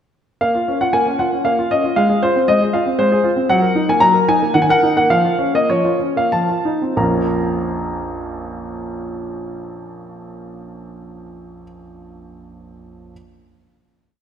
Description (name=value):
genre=classical-period piano sonatina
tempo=90-119 BPM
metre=3/4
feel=straight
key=Bb minor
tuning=A4 = 440 Hz
part: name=warm grand piano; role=solo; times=0.4-13.1 s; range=Bb1 to Bb5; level=-15 LUFS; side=equal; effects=none
room=wet scoring stage reverb, RT60 1.8 s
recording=none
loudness=-14 LUFS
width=side -8 dB against mid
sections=0.4-7.0 theme; 7.0-10.9 final chord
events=slowing down 2.7-7.0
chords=0.4 Bbm; 2.0 Fm/Ab; 3.5 Ebm/Gb; 4.5 Ebm; 5.1 Bbm/F; 6.3 F7; 7.0 Bbm